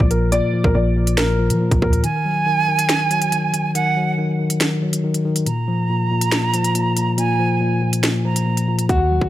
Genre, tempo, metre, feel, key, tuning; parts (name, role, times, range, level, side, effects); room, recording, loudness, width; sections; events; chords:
hip hop, drill; 140 BPM; 4/4; half-time; A4 = 439 Hz
dark grand piano; melody; 0.0-2.0, 8.9-9.3 s; Gb4 to D5; -22 LUFS; left 2 dB; digital delay
mellow tine electric piano; accompaniment; 0.0-9.3 s; Bb2 to Gb3; -19 LUFS; left 1 dB
hard-hitting 808-style bass; bass; 0.0-2.0, 8.9-9.3 s; Bb1 to F3; -20 LUFS; equal
drill drum kit; drums; 0.0-9.3 s; finger snaps, hi-hat, kick drum, snare drum; -21 LUFS; equal; overdrive
jazz flute; second line; 2.0-8.9 s; Gb5 to Bb5; -21 LUFS; right 5 dB; digital delay
light reverb; -16 LUFS; side -14 dB against mid
0.0-9.3 A section
break 2.0-8.9; kick muted 8.0-8.9
0.0 Bb; 2.0 Ebm; 5.5 Bb5